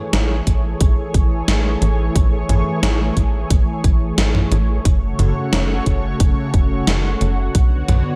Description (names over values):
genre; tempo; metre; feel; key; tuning
synthwave; 89 BPM; 4/4; straight; unclear; A4 = 440 Hz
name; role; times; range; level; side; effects
analog string pad; sustained chords; 0.0-8.2 s; C#3 to C#5; -25 LUFS; equal; ensemble chorus, sidechain pumping
tight sequencer bass; bass; 0.1-8.0 s; F#1 to B1; -21 LUFS; equal; sidechain pumping
gated 80s digital drum machine; drums; 0.1-8.0 s; hi-hat, snare drum, toms; -24 LUFS; equal; gated reverb, gated reverb snare
electronic kick drum; drums; 0.5-7.7 s; none; -19 LUFS; equal; none
room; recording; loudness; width
light reverb, digital ambience; dark, warm production; -17 LUFS; mono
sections
0.0-8.2 A section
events
none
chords
0.0 Amaj7; 4.9 F#m; 7.5 Bmadd9